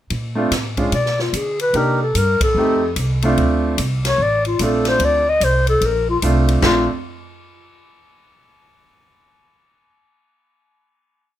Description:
jazz, small-group swing and bop; 148 BPM; 4/4; swing 64% on 8ths; Bb major; A4 = 436 Hz
upright bass; bass; 0.1-6.9 s; A1 to D3; -20 LUFS; equal
swinging big-band drum kit; drums; 0.1-6.7 s; china cymbal, hi-hat, kick drum, ride cymbal, snare drum, toms; -25 LUFS; left 1 dB
clear concert grand piano; accompaniment; 0.4-6.9 s; Ab3 to G4; -20 LUFS; right 2 dB
breathy clarinet; melody; 0.9-6.9 s; F4 to Eb5; -18 LUFS; left 2 dB; plate reverb
light reverb; -15 LUFS; side -12 dB against mid
0.1-6.6 A section; 6.6-8.2 final chord
band accent 2.4
0.1 Bbmaj9; 0.9 Bdim7; 1.7 Cm7; 2.6 F7; 3.4 Bbmaj9

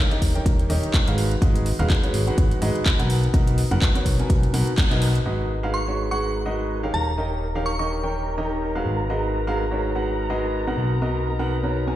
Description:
piano house; 125 BPM; 4/4; swing 56% on 16ths; G# dorian; A4 = 442 Hz
clear concert grand piano; riff; 0.1-12.0 s; B2 to G#5; -26 LUFS; right 1 dB; sidechain pumping, tape echo
house drum kit; drums; 0.1-5.2 s; handclaps, hi-hat; -28 LUFS; equal; studio reverb
solid FM bass; bass; 0.2-12.0 s; D#1 to B1; -24 LUFS; equal; sidechain pumping
electronic kick drum; drums; 0.2-4.9 s; -20 LUFS; equal; studio reverb
dark studio violin section; sustained chords; 5.3-12.0 s; A#4 to A#5; -32 LUFS; left 1 dB; sidechain pumping, low-pass filter
glassy synth bell; melody; 5.7-7.9 s; A#5 to C#6; -29 LUFS; right 1 dB; chorus, tape echo
light reverb, digital ambience; played on a big sound system in a bare room, stone room reverb; -20 LUFS; side -13 dB against mid
0.0-5.3 A section; 5.3-12.0 B section
band accent 4.8; filter sweep on violin section 5.3-12.0
0.0 D#7; 1.2 G#m7; 3.1 Bmaj7; 5.3 G#m7; 6.9 D#7; 8.9 G#m7; 10.8 Bmaj7

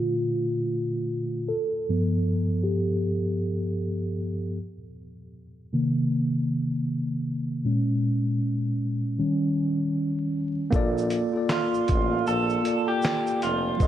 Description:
lo-fi hip hop; 78 BPM; 4/4; swing 58% on 16ths; Bb major; A4 = 443 Hz
mellow tine electric piano; accompaniment; 0.0-13.9 s; G2 to F5; -25 LUFS; equal; medium stereo tremolo, low-pass filter
warm tuba; bass; 10.7-13.9 s; F1 to Bb1; -30 LUFS; equal
dusty soul sampler-style drum kit; drums; 10.7-13.9 s; handclaps, hi-hat, kick drum, shaker, snare drum; -27 LUFS; equal
electric guitar through a small old amp; melody; 11.5-13.9 s; F4 to A4; -26 LUFS; right 2 dB; lush chorus, low-pass filter, diffuse ambient delay
moderate plate reverb, RT60 3.6 s; dreamy mix soaked in reverb, vinyl crackle, low-pass filter; -24 LUFS; side -11 dB against mid
0.0-10.7 A section; 10.7-13.9 B section
tine electric piano solo 0.0-10.7; filter sweep 0.0-10.7
0.0 Bbmaj7; 1.5 G7; 4.6 Cm7; 7.7 Bbm7; 9.2 Eb7; 10.7 Bbmaj7

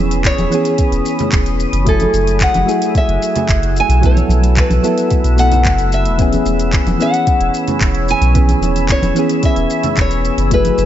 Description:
sunset chillout; 111 BPM; 4/4; straight; E major; A4 = 438 Hz
nylon-string guitar; melody; 0.0-10.9 s; G#4 to G#5; -19 LUFS; equal; tape echo
soft electric-piano-like synth keys; accompaniment; 0.0-10.9 s; E3 to G#5; -18 LUFS; moving between left 6 dB and right 7 dB; chorus, auto-pan, tape echo
shimmering ambient pad; sustained chords; 0.0-10.9 s; A3 to E6; -24 LUFS; equal; chorus, built-in reverb, phaser
round analog bass; bass; 0.0-10.9 s; E1 to B1; -16 LUFS; equal
smooth R&B drum kit; drums; 0.1-10.9 s; handclaps, hi-hat, shaker; -24 LUFS; equal; studio reverb
electronic kick drum; drums; 0.2-10.6 s; -16 LUFS; equal; studio reverb
congas; percussion; 0.4-10.8 s; -23 LUFS; right 2 dB
little or no reverb; nothing above 7.7 kHz; -12 LUFS; side -11 dB against mid
0.0-10.9 A section
0.0 E6; 1.9 F#m9; 4.0 B7sus4; 6.2 E6

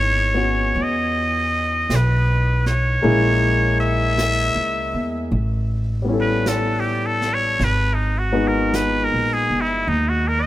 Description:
jazz ballad; 53 BPM; 4/4; swing 66% on 8ths; A4 = 436 Hz
trumpet with straight mute; melody; 0.0-10.5 s; D#4 to E5; -21 LUFS; equal
warm baby grand piano; accompaniment; 0.0-10.5 s; E3 to B4; -24 LUFS; left 2 dB
upright bass; bass; 0.0-10.5 s; G1 to E2; -21 LUFS; equal
jazz brush drum kit; drums; 0.8-10.5 s; brushed snare drum, hi-hat, snare drum; -31 LUFS; right 1 dB
light reverb; heard from further back in the room; -17 LUFS; side -15 dB against mid
0.0-10.5 A section
muted trumpet solo 0.0-10.5
0.0 Amaj9#11 (rootless); 3.0 A#m7b5; 5.3 A9; 7.6 G#m9

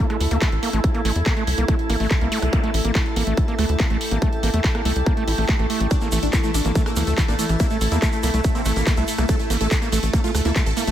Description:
psychedelic trance; 142 BPM; 4/4; straight; A4 = 440 Hz
overtone-sweeping drone; sustained chords; 0.0-10.9 s; A3 to A4; -30 LUFS; equal; chorus, built-in reverb, sidechain pumping
overdriven acid bass; riff; 0.0-10.9 s; A3 to E4; -27 LUFS; right 1 dB; distortion, auto-pan, vintage 12-bit sampler grit, sidechain pumping, tape echo
airy breathy pad; texture; 0.0-10.9 s; E4 to A5; -30 LUFS; right 1 dB; chorus, sidechain pumping
techno drum kit; drums; 0.1-10.9 s; handclaps, hi-hat, rim click; -28 LUFS; equal
tight sequencer bass; bass; 0.2-10.9 s; A1 to E2; -22 LUFS; equal
electronic kick drum; drums; 0.4-10.6 s; -21 LUFS; equal; distortion
zap; sound effects; 2.3-2.4 s; -32 LUFS; equal
dense compressed supersaw; melody; 5.9-10.9 s; E3 to A4; -26 LUFS; right 1 dB; phaser, sidechain pumping, tape echo
egg shaker; percussion; 5.9-10.9 s; -33 LUFS; right 4 dB
little or no reverb; -18 LUFS; side -11 dB against mid
0.0-10.9 A section
0.0 A5

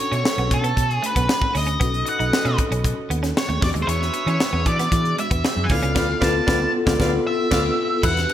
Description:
polished 1980s jazz-funk pop; 116 BPM; 4/4; straight; A4 = 440 Hz
octave-fuzz lead guitar; melody; 0.0-8.3 s; A4 to A5; -24 LUFS; equal; distortion
warm horn section; second line; 0.0-7.6 s; F#4 to F5; -30 LUFS; right 1 dB
mellow tine electric piano; accompaniment; 0.0-8.3 s; B3 to B4; -26 LUFS; left 3 dB; medium stereo tremolo, ensemble chorus
electric guitar at the edge of break-up; riff; 0.1-8.3 s; G#3 to E4; -30 LUFS; right 4 dB; analog chorus
vintage muted fingered electric bass; bass; 0.1-8.2 s; B1 to E3; -24 LUFS; equal
crisp fusion drum kit; drums; 0.1-8.3 s; crash cymbal, hi-hat, kick drum, ride cymbal, snare drum; -23 LUFS; equal; gated reverb
moderate lush hall reverb, RT60 1.6 s, small room ambience; bright 1980s-style digital production; -18 LUFS; side -11 dB against mid
0.0-8.0 A section
band accent 6.0-8.0
0.0 Bm9; 1.8 B7; 3.6 E7; 5.7 Dm6

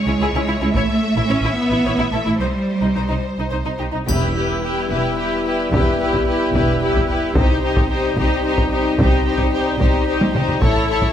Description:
cinematic, epic orchestral film score; 73 BPM (dotted quarters); 6/8; straight; A4 = 440 Hz
warm symphonic violin section; melody; 0.0-11.1 s; B4 to E5; -26 LUFS; left 4 dB
rich symphonic cello section; bass; 0.0-11.1 s; E2 to C#4; -23 LUFS; right 2 dB
rich studio violin section; second line; 0.1-11.1 s; C#4 to C#5; -24 LUFS; left 1 dB
clear symphonic viola section; accompaniment; 0.1-11.1 s; Eb4 to E4; -24 LUFS; left 1 dB
clear symphonic double bass section; bass; 0.1-11.1 s; E1 to C#2; -24 LUFS; right 2 dB
taiko ensemble; drums; 0.7-11.1 s; -20 LUFS; equal
mellow French horn section; sustained chords; 4.1-10.6 s; B3 to E4; -25 LUFS; left 3 dB
warm trombone section; sustained chords; 4.1-10.6 s; C3 to G3; -27 LUFS; right 1 dB
timpani; percussion; 4.1-4.9 s; E2; -27 LUFS; left 1 dB
triangle; percussion; 4.1-5.1 s; -34 LUFS; left 4 dB
moderate scoring stage reverb, RT60 1.8 s; -16 LUFS; side -10 dB against mid
0.0-4.1 A section; 4.1-11.1 B section
drum fill 10.2-10.6
0.0 C#m; 0.7 A; 2.4 Cm; 4.1 Em; 7.4 Cm; 10.6 A

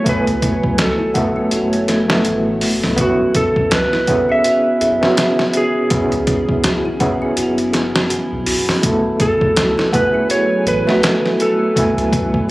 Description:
trip hop; 82 BPM; 4/4; swing 58% on 16ths; F# minor; A4 = 441 Hz
clean lap steel guitar; melody; 0.0-12.1 s; F#4 to E5; -18 LUFS; right 1 dB; tape echo
overdriven reed electric piano; accompaniment; 0.0-12.5 s; A3 to G#5; -19 LUFS; equal; tremolo, vintage 12-bit sampler grit, tape echo
warbly tape-like pad; sustained chords; 0.0-12.5 s; F#3 to G#5; -26 LUFS; right 1 dB; chorus, built-in reverb, phaser
trip hop sampler-style drum kit; drums; 0.1-12.5 s; hi-hat, kick drum, snare drum; -19 LUFS; equal; overdrive
soft dub sub bass; bass; 0.3-12.5 s; F#1 to C#2; -26 LUFS; equal; tube saturation
music box; arpeggios; 0.8-11.6 s; C#4 to F#5; -25 LUFS; left 1 dB; vintage 12-bit sampler grit, ping-pong delay
light reverb; recorded on a phone in the room, club reverb; -14 LUFS; side -19 dB against mid
0.0-12.5 A section
0.0 F#m11; 3.0 C#m7/F#; 8.8 F#m11

